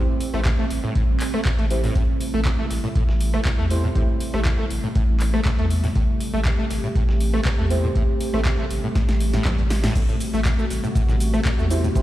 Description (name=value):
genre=acid house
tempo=120 BPM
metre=4/4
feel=straight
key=unclear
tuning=A4 = 441 Hz
part: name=warbly tape-like pad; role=sustained chords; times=0.0-12.0 s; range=C3 to G4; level=-28 LUFS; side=right 1 dB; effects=chorus, built-in reverb, sidechain pumping
part: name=acid bass, saw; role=riff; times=0.0-12.0 s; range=G2 to A3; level=-27 LUFS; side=left 1 dB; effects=overdrive, ensemble chorus, sidechain pumping, dub echo
part: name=deep mellow chord stab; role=stabs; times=0.0-4.4, 7.7-8.4, 11.7-12.0 s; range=A3 to C5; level=-31 LUFS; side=right 2 dB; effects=chorus, phaser, dub echo
part: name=saturated sub bass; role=bass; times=0.0-12.0 s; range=A1 to E2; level=-23 LUFS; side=equal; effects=sidechain pumping
part: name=dusty soul sampler-style drum kit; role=drums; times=0.2-12.0 s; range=hi-hat, snare drum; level=-40 LUFS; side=equal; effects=none
part: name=electro analog drum machine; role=drums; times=0.2-12.0 s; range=crash cymbal, handclaps, hi-hat, rim click, shaker, snare drum, toms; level=-31 LUFS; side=equal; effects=overdrive
part: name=electronic kick drum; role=drums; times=0.5-12.0 s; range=none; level=-22 LUFS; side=equal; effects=overdrive
room=light reverb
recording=played on a big sound system in a bare room, stone room reverb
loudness=-19 LUFS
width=side -14 dB against mid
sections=0.0-12.0 A section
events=drum fill 9.0-10.0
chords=0.0 Am7